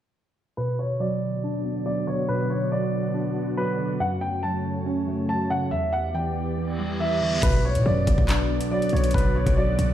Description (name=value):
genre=hip hop, drill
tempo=140 BPM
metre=4/4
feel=half-time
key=B minor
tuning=A4 = 440 Hz
part: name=dark grand piano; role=melody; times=0.6-9.9 s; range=B4 to A5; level=-27 LUFS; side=equal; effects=low-pass filter
part: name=mellow tine electric piano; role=accompaniment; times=0.6-9.9 s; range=E2 to D4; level=-26 LUFS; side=right 1 dB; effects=ensemble chorus, low-pass filter
part: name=sweeping resonant pad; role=sustained chords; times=0.6-9.9 s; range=C#3 to D5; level=-33 LUFS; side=left 2 dB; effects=chorus, low-pass filter
part: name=reverse cymbal and impact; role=sound effects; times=6.7-9.1 s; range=none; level=-33 LUFS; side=left 2 dB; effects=none
part: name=hard-hitting 808-style bass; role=bass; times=7.4-9.9 s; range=B1 to B2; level=-24 LUFS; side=left 1 dB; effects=none
part: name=drill drum kit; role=drums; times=7.4-9.9 s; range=crash cymbal, handclaps, hi-hat, kick drum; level=-24 LUFS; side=left 1 dB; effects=none
room=light reverb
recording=played on a big sound system in a bare room, stone room reverb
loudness=-22 LUFS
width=side -11 dB against mid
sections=0.6-7.4 A section; 7.4-9.9 B section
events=filter sweep 0.6-7.4; reverse cymbal 6.7-7.4; impact 7.4-9.1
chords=0.6 Bm; 4.0 F#m; 5.7 Em7; 7.4 Bm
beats=| 0.57 1.00 1.43 1.86 | 2.29 2.72 3.14 3.57 | 4.00 4.43 4.86 5.29 | 5.72 6.14 6.57 7.00 | 7.43 7.86 8.29 8.72 | 9.14 9.57